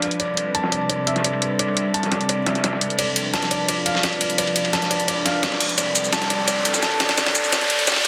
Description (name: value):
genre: liquid drum and bass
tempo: 172 BPM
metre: 4/4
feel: straight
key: D dorian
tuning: A4 = 440 Hz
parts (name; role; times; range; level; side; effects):
- glassy FM pad; sustained chords; 0.0-8.1 s; C3 to B4; -29 LUFS; equal; ensemble chorus, built-in reverb
- felt-muted upright piano; arpeggios; 0.0-8.1 s; D5 to A5; -27 LUFS; equal; low-pass filter, delay
- dusty soul sampler-style drum kit; drums; 0.0-8.1 s; hi-hat, ride cymbal, snare drum; -26 LUFS; equal; high-pass filter on hats, low-pass filter on hats, high-pass filter on cymbals, low-pass filter on cymbals, high-pass filter on snare, low-pass filter on snare
- electronic hi-hat and shaker; drums; 0.0-8.1 s; none; -25 LUFS; equal; overdrive, low-pass filter on hats, low-pass filter on perc
- riser and reverse cymbal; sound effects; 4.7-8.1 s; none; -28 LUFS; equal; none
room: wet plate reverb, RT60 2.1 s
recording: dense, heavily limited modern master, high-pass filter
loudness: -21 LUFS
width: mono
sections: 0.0-3.0 A section; 3.0-8.1 B section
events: build-up 3.0-8.1; riser 4.7-8.1; reverse cymbal 7.9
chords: 0.0 Am11/C; 3.0 Dm6; 5.6 Am11/C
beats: | 0.20 0.55 0.90 1.24 | 1.59 1.94 2.29 2.64 | 2.99 3.34 3.69 4.04 | 4.38 4.73 5.08 5.43 | 5.78 6.13 6.48 6.83 | 7.17 7.52 7.87